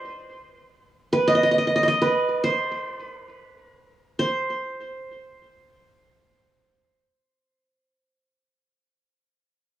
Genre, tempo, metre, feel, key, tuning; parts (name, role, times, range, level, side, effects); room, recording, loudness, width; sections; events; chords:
Arabic maqam ensemble; free time; C maqam nahawand; A4 = 440 Hz
qanun; solo; 0.0-8.5 s; B4 to Eb5; -21 LUFS; right 1 dB; cassette tape, tape echo
light reverb, studio reverb; home recording on cassette, small room ambience; -20 LUFS; side -12 dB against mid
0.0-4.2 A section; 4.2-9.1 B section
slowing down 0.0-4.2